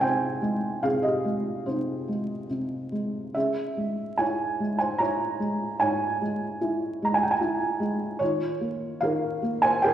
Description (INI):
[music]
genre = classical, lyrical solo piano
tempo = 73 BPM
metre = 3/4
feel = rubato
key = unclear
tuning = A4 = 440 Hz
[part]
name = felt-muted upright piano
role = solo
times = 0.0-9.9 s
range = Ab2 to Bb5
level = -24 LUFS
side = right 1 dB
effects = none
[sound]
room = wet recital hall reverb, RT60 1.5 s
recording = heard from further back in the room, vinyl crackle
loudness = -24 LUFS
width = side -10 dB against mid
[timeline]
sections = 0.0-9.9 A section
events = none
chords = 0.0 Fm9/C; 3.4 Dbm; 8.2 Eb7sus2